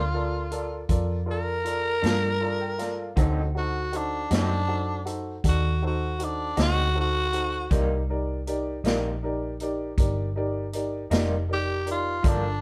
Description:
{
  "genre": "slow blues",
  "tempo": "53 BPM (dotted quarters)",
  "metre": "12/8",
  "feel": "straight",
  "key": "unclear",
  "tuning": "A4 = 440 Hz",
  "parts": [
    { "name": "growling tenor saxophone", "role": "melody", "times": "0.0-12.6 s", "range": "D4 to Bb4", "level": "-30 LUFS", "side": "equal", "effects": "none" },
    { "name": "warm upright piano", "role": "accompaniment", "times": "0.0-12.5 s", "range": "Eb4 to Bb5", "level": "-34 LUFS", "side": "equal", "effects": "none" },
    { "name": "vintage muted fingered electric bass", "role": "bass", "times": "0.0-12.6 s", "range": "F1 to G2", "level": "-31 LUFS", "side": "equal", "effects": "none" },
    { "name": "vintage drum kit", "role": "drums", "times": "0.5-12.4 s", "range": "hi-hat, kick drum, snare drum", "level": "-28 LUFS", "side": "equal", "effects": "none" },
    { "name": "electric guitar through a small old amp", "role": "accompaniment", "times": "2.0-12.5 s", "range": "G2 to Eb4", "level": "-33 LUFS", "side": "equal", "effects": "tremolo" }
  ],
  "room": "moderate studio reverb, RT60 0.6 s",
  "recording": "band playing live in one room",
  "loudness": "-26 LUFS",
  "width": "mono",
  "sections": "0.0-12.6 A section",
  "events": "tenor saxophone solo 0.0-12.6; upright piano fill 2.0-3.2",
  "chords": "0.0 Gm7; 3.2 D7b9; 7.7 Cm7",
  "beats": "0.90 2.03 | 3.17 4.31 5.45 6.58 | 7.72 8.85 9.98 11.12 | 12.25"
}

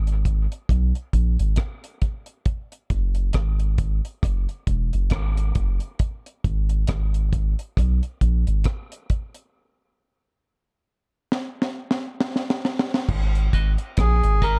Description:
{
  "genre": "dub reggae",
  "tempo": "68 BPM",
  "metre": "4/4",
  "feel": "swing 58% on 16ths",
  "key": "G# minor",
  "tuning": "A4 = 440 Hz",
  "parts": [
    { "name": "soft dub sub bass", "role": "bass", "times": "0.0-14.6 s", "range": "E1 to B1", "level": "-23 LUFS", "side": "equal", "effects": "none" },
    { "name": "deep reggae drum kit", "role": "drums", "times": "0.1-14.6 s", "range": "crash cymbal, hi-hat, kick drum, rim click, snare drum", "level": "-26 LUFS", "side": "equal", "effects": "none" },
    { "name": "mellow tonewheel organ", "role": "accompaniment", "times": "13.3-14.5 s", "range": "none", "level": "barely audible", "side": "none", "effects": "none" },
    { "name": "clean electric guitar", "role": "accompaniment", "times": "13.5-14.6 s", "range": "F#4 to D#5", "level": "-36 LUFS", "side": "equal", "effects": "high-pass filter, dub echo" },
    { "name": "melodica", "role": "melody", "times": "14.0-14.6 s", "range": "G#4 to A#4", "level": "-25 LUFS", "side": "equal", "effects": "dub echo" }
  ],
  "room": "small room ambience",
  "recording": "dark, warm production",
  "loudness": "-23 LUFS",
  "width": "mono",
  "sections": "0.0-13.1 A section; 13.1-14.6 B section",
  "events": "break 0.0-13.1; drum fill 11.3-13.1",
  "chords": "0.0 G#m; 2.5 Eadd9 (rootless); 6.0 N.C.; 13.1 G#m7",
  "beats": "0.69 1.58 | 2.46 3.35 4.23 5.12 | 6.00 6.89 7.77 8.66 | 9.55 10.43 11.32 12.21 | 13.09 13.98"
}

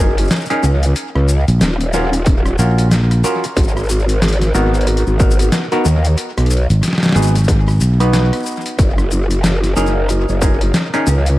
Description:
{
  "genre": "glitch hop",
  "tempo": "92 BPM",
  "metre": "4/4",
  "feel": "swing 60% on 16ths",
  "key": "G# dorian",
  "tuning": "A4 = 440 Hz",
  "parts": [
    { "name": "overdriven clav", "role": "stabs", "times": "0.0-11.1 s", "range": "B3 to B4", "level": "-20 LUFS", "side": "equal", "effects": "phaser, sidechain pumping, dub echo" },
    { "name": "growl bass", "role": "bass", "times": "0.0-11.4 s", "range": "D#1 to D#2", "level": "-14 LUFS", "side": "equal", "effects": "chorus, overdrive" },
    { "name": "boom bap sampler-style drum kit", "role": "drums", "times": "0.2-11.4 s", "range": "hi-hat, rim click, shaker, snare drum", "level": "-20 LUFS", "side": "left 1 dB", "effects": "studio reverb, dub echo" },
    { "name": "fingered electric bass", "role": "bass", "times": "1.5-8.3 s", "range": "G#1 to B1", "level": "-12 LUFS", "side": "equal", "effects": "none" },
    { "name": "electronic kick drum", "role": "drums", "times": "2.3-10.6 s", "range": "none", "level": "-14 LUFS", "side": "equal", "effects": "distortion, studio reverb" }
  ],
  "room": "light reverb",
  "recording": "echo-heavy mix, vinyl crackle",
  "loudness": "-12 LUFS",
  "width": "side -16 dB against mid",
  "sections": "0.0-11.4 A section",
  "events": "none",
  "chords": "0.0 F#6; 1.0 D#m7; 3.6 G#m7; 8.8 F#6",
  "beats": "0.31 | 0.96 1.61 2.26 2.92 | 3.57 4.22 4.87 5.52 | 6.18 6.83 7.48 8.13 | 8.78 9.44 10.09 10.74"
}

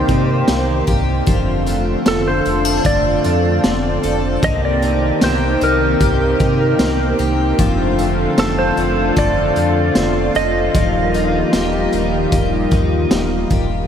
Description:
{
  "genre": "dream pop",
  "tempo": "76 BPM",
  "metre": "4/4",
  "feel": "straight",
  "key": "unclear",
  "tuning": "A4 = 440 Hz",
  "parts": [
    { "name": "clean lap steel guitar", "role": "melody", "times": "0.0-13.1 s", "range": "A4 to Eb5", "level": "-21 LUFS", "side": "right 2 dB", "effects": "analog chorus, analog delay" },
    { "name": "lush unison pad", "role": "sustained chords", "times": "0.0-13.9 s", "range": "D3 to G4", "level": "-19 LUFS", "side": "equal", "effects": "chorus" },
    { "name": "picked plugged-in twelve-string acoustic guitar", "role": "arpeggios", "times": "0.0-13.9 s", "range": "F3 to A4", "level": "-23 LUFS", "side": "left 4 dB", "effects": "lush chorus, analog delay" },
    { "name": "sub bass with octave", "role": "bass", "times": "0.0-13.9 s", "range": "Eb1 to C3", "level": "-21 LUFS", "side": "equal", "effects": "none" },
    { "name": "raw garage drum kit", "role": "drums", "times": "0.1-13.7 s", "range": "hi-hat, kick drum, snare drum, tambourine", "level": "-20 LUFS", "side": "equal", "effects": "none" }
  ],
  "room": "moderate huge ambient reverb, RT60 7.8 s",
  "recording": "dreamy mix soaked in reverb",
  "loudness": "-14 LUFS",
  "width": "side -8 dB against mid",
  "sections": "0.0-13.9 A section",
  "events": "none",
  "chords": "0.0 Cm7; 1.3 F6; 4.4 Cm7; 7.6 F6; 10.7 Ebadd9",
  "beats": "0.48 | 1.27 2.06 2.85 3.64 | 4.43 5.22 6.01 6.80 | 7.59 8.38 9.16 9.96 | 10.74 11.53 12.32 13.11"
}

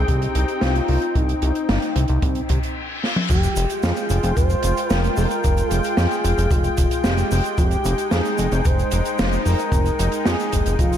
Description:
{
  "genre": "synthwave",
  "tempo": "112 BPM",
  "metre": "4/4",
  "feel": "straight",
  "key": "F minor",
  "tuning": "A4 = 440 Hz",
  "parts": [
    { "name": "expressive synth lead", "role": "melody", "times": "0.0-11.0 s", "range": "Eb4 to C5", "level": "-26 LUFS", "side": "left 1 dB", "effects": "chorus, tape echo" },
    { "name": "warm analog pad", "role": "sustained chords", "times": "0.0-11.0 s", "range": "Ab3 to G5", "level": "-26 LUFS", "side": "left 1 dB", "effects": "chorus, sidechain pumping" },
    { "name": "fat analog bass", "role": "bass", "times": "0.0-11.0 s", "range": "F1 to F2", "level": "-20 LUFS", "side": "equal", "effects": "tube saturation, sidechain pumping" },
    { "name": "kick drum", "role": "drums", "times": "0.1-10.9 s", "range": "none", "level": "-22 LUFS", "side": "equal", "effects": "none" },
    { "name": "open jazz drum kit", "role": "drums", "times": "0.1-11.0 s", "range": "crash cymbal, hi-hat, shaker, snare drum, toms", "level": "-26 LUFS", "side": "right 1 dB", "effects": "none" },
    { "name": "reverse cymbal", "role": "sound effects", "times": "2.4-3.3 s", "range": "none", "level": "-30 LUFS", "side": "left 4 dB", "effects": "none" }
  ],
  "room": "moderate lush hall reverb, RT60 2.2 s",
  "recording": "dreamy mix soaked in reverb",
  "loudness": "-18 LUFS",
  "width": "side -10 dB against mid",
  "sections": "0.0-3.3 A section; 3.3-11.0 B section",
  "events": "reverse cymbal 2.4-3.3; drum fill 3.0",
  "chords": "0.0 Cm; 3.3 Fmadd9",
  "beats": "0.08 0.62 | 1.16 1.69 2.23 2.76 | 3.30 3.83 4.37 4.91 | 5.44 5.98 6.51 7.05 | 7.58 8.12 8.66 9.19 | 9.73 10.26 10.80"
}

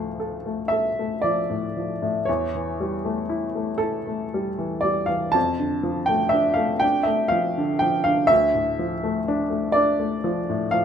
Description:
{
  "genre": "classical, romantic nocturne for solo piano",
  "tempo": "37-41 BPM (dotted quarters)",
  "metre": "6/8",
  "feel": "rubato",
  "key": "D minor",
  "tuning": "A4 = 438 Hz",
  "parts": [
    { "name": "clear upright piano", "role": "solo", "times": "0.0-10.8 s", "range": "D2 to A5", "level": "-21 LUFS", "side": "equal", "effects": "none" }
  ],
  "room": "moderate small room reverb, RT60 0.5 s",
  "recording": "minimal, uncompressed stereo recording",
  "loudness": "-21 LUFS",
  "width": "side -8 dB against mid",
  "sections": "0.0-10.8 A section",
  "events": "none",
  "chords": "0.0 Dm; 2.3 A7/E; 5.4 Dm/F; 8.3 Dm",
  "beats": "0.70 | 2.28 3.81 | 5.35 6.83 | 8.30 9.77"
}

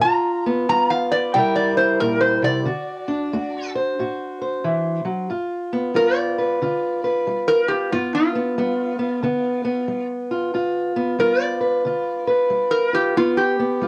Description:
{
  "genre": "acoustic country blues, solo or duo",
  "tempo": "91 BPM",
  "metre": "4/4",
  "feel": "swing 64% on 8ths",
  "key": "G mixolydian",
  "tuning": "A4 = 440 Hz",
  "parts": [
    { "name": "metal-body resonator slide guitar", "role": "melody", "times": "0.0-13.9 s", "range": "F4 to Bb5", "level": "-22 LUFS", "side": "equal", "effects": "none" },
    { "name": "fingerpicked steel-string acoustic guitar", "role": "accompaniment", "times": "0.0-13.9 s", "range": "G2 to C5", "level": "-23 LUFS", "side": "equal", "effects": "cassette tape" }
  ],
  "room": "moderate studio reverb, RT60 0.6 s",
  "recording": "home recording on cassette",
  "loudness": "-21 LUFS",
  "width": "mono",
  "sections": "0.0-5.3 A section; 5.3-13.9 B section",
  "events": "resonator guitar played with a steel bar solo 5.3-13.9",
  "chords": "0.0 G7; 1.3 C7; 2.6 D7; 5.3 G7",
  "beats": "| 0.01 0.67 1.33 1.99 | 2.64 3.30 3.96 4.62 | 5.27 5.93 6.59 7.25 | 7.91 8.56 9.22 9.88 | 10.53 11.19 11.85 12.50 | 13.16 13.81"
}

